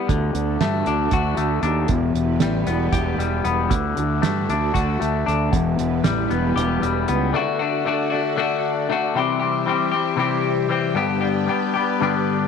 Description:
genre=psychedelic rock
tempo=231 BPM (eighths)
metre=7/8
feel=straight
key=unclear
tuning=A4 = 441 Hz
part: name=string machine, violas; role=sustained chords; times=0.0-12.5 s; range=A3 to G5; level=-29 LUFS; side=right 9 dB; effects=ensemble chorus
part: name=semi-hollow electric guitar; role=riff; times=0.0-12.5 s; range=E2 to G4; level=-20 LUFS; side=left 7 dB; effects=phaser
part: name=fuzz fingered electric bass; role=bass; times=0.1-7.3 s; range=E1 to G2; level=-23 LUFS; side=right 2 dB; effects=overdrive
part: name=cloth-damped thuddy drum kit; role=drums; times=0.1-7.2 s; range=hi-hat, kick drum, snare drum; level=-24 LUFS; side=right 5 dB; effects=none
room=moderate echo chamber reverb, RT60 1.5 s, studio ambience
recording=1960s-style stereo with parts hard left and right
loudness=-18 LUFS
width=side -6 dB against mid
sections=0.0-7.3 A section; 7.3-12.5 B section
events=none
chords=0.1 D; 1.9 Em; 3.7 D; 5.5 Em; 7.3 D; 9.2 C; 11.0 G

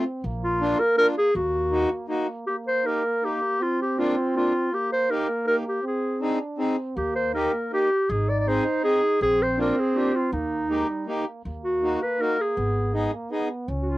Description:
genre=alpine folk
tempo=161 BPM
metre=3/4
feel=straight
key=Eb major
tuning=A4 = 440 Hz
part: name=clear euphonium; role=second line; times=0.0-14.0 s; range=G3 to Eb4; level=-30 LUFS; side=right 2 dB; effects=none
part: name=accordion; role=accompaniment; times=0.0-13.5 s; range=Bb3 to Ab4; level=-26 LUFS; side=equal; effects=none
part: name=upright bass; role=bass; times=0.2-1.8, 7.0-14.0 s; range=Ab1 to Eb2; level=-29 LUFS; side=equal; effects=transformer saturation
part: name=warm clarinet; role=melody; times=0.4-14.0 s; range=Eb4 to D5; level=-23 LUFS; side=equal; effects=cassette tape
room=wet booth ambience, RT60 0.2 s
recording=home recording on cassette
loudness=-22 LUFS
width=side -17 dB against mid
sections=0.0-2.5 A section; 2.5-11.5 B section; 11.5-14.0 A section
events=none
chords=0.2 Bb; 1.4 Ebm; 2.5 Eb; 3.6 Bb; 4.7 Eb; 5.8 Ab; 7.0 Eb; 8.1 Ab; 9.2 Bb; 10.3 Eb; 11.5 Ebm; 12.6 Abm

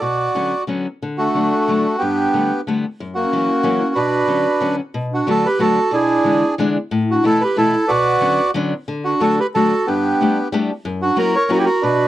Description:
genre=musette waltz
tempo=183 BPM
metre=3/4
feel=swing 53% on 8ths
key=B minor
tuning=A4 = 440 Hz
part: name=bandoneon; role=melody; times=0.0-12.1 s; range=A3 to D5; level=-17 LUFS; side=right 1 dB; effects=none
part: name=picked steel-string acoustic guitar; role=accompaniment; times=0.0-12.1 s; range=F#2 to G4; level=-21 LUFS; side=left 3 dB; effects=none
part: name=warm clarinet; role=second line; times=1.2-12.1 s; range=C#4 to B4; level=-20 LUFS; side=right 3 dB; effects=none
room=light reverb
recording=dry, close 1970s-style studio recording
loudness=-15 LUFS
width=side -14 dB against mid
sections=0.0-5.0 A section; 5.0-12.1 A section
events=none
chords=0.0 Bmadd9; 1.0 D; 2.0 Gadd9; 3.0 F#7; 4.0 Bmadd9; 5.0 Bm7; 5.9 E7/B; 6.9 Asus2; 7.9 Bmadd9; 8.9 D; 9.9 Gadd9; 10.8 F#7

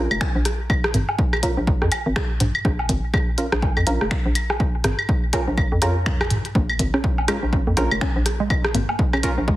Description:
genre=minimal techno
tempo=123 BPM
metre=4/4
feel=swing 59% on 16ths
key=Bb minor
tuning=A4 = 440 Hz
part: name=filtered dub chord stab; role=stabs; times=0.0-9.3 s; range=Db4 to Bb4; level=-28 LUFS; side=right 2 dB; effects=chorus, dub echo
part: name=hollow knocking FM bass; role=bass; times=0.0-9.6 s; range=F1 to F2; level=-23 LUFS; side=equal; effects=sidechain pumping
part: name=garage drum kit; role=percussion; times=0.1-9.2 s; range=claves, rim click, toms, woodblock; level=-24 LUFS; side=equal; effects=studio reverb, dub echo
part: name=electronic kick drum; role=drums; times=0.2-9.6 s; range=none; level=-22 LUFS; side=equal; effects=studio reverb
part: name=minimal click drum kit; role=drums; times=0.2-9.3 s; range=finger snaps, hi-hat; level=-27 LUFS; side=left 1 dB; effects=studio reverb
part: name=hollow square pluck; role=riff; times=6.6-9.5 s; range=Ab3 to Db4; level=-27 LUFS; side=right 1 dB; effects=chorus, sidechain pumping, tape echo
room=light reverb, digital ambience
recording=heavily compressed radio sound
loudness=-18 LUFS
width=side -16 dB against mid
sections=0.0-9.6 A section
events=none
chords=0.0 Bbm

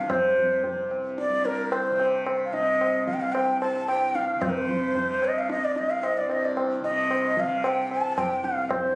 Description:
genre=indian classical, Hindustani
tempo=112 BPM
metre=4/4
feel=straight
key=C raga kafi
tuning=A4 = 439 Hz
part: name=breathy bansuri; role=melody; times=0.0-9.0 s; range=Bb4 to A5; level=-24 LUFS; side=equal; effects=none
part: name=tanpura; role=drone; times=0.0-9.0 s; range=C2 to C3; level=-32 LUFS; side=equal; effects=none
part: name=tabla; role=percussion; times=0.1-8.9 s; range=none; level=-29 LUFS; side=equal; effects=none
room=moderate recital hall reverb, RT60 1.7 s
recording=recorded on a phone in the room, studio reverb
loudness=-22 LUFS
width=side -23 dB against mid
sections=0.0-8.7 A section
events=none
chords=none

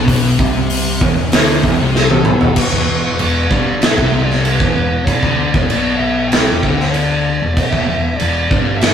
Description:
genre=stoner and doom metal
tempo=96 BPM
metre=4/4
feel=straight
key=E minor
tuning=A4 = 440 Hz
part: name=thick fuzz guitar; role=riff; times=0.0-8.9 s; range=E2 to D3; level=-18 LUFS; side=left 4 dB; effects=distortion
part: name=thick fuzz guitar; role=riff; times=0.0-8.9 s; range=E2 to D3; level=-24 LUFS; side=right 5 dB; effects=distortion
part: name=fuzz fingered electric bass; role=bass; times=0.0-8.9 s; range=E1 to D2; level=-23 LUFS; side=equal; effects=overdrive
part: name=big rock drum kit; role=drums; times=0.1-8.9 s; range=crash cymbal, hi-hat, kick drum, snare drum, toms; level=-14 LUFS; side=right 1 dB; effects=none
part: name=fuzz lead guitar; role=melody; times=2.0-8.9 s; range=A4 to G5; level=-23 LUFS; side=equal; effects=distortion
room=light reverb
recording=rough rehearsal-room recording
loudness=-12 LUFS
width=side -8 dB against mid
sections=0.0-2.6 A section; 2.6-8.9 B section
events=drum fill 2.0-2.6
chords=0.0 E5; 2.6 Em

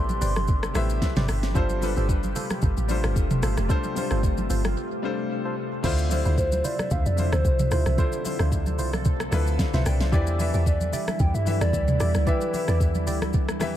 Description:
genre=amapiano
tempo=112 BPM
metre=4/4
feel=swing 55% on 16ths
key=D dorian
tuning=A4 = 440 Hz
part: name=hollow clarinet-like synth lead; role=melody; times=0.0-1.0, 6.4-12.8 s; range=A4 to C6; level=-30 LUFS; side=equal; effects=chorus, tape echo
part: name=clear grand piano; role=accompaniment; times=0.0-13.8 s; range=D3 to G5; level=-32 LUFS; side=left 5 dB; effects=tape echo
part: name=deep dark ambient pad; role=sustained chords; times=0.0-13.8 s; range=B2 to E5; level=-32 LUFS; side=equal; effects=chorus, built-in reverb
part: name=deep log drum bass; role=bass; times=0.0-13.8 s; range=F1 to G2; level=-25 LUFS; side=equal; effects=none
part: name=smooth R&B drum kit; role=drums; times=0.1-13.7 s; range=crash cymbal, hi-hat, kick drum, rim click, shaker, snare drum, toms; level=-26 LUFS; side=equal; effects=none
part: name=congas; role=percussion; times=0.1-13.7 s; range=none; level=-35 LUFS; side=right 2 dB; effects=none
part: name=percussive organ stab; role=stabs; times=0.2-13.2 s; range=E4 to D5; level=-35 LUFS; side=right 4 dB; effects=chorus, tape echo
room=little or no reverb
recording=echo-heavy mix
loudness=-22 LUFS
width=side -12 dB against mid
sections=0.0-5.8 A section; 5.8-13.8 A section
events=drop 0.0-5.8, 5.8-13.8; break 4.8-5.8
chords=0.0 Am11; 1.6 G9sus4; 5.8 Dm9; 10.1 Em7

